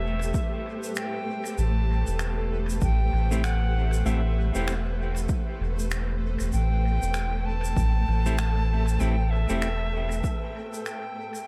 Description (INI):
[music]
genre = ambient dub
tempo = 97 BPM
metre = 4/4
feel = swing 60% on 16ths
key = A minor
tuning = A4 = 441 Hz
[part]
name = bright reedy silver concert flute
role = melody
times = 0.0-11.5 s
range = E5 to A5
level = -37 LUFS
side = equal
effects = dub echo
[part]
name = granular cloud pad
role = sustained chords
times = 0.0-11.5 s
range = A3 to G5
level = -37 LUFS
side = equal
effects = built-in reverb
[part]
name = soft dub sub bass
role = bass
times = 0.0-10.2 s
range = E1 to A1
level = -27 LUFS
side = equal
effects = tube saturation
[part]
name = shaker and finger snaps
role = drums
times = 0.2-11.5 s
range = none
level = -41 LUFS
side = equal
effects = dub echo
[part]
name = electronic kick drum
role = drums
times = 0.3-10.4 s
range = none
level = -30 LUFS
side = equal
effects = overdrive
[part]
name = clean electric guitar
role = stabs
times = 3.3-9.7 s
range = A3 to G4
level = -37 LUFS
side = equal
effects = dub echo
[part]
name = wind-like tuned noise texture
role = texture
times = 7.7-11.5 s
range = A4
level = -44 LUFS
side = equal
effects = built-in reverb
[sound]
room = small room ambience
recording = echo-heavy mix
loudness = -26 LUFS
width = mono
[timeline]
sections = 0.0-11.5 A section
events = fade-out 9.8-11.5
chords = 0.0 Am7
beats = 0.34 0.96 | 1.58 2.20 2.82 3.44 | 4.06 4.67 5.29 5.91 | 6.53 7.15 7.77 8.39 | 9.00 9.62 10.24 10.86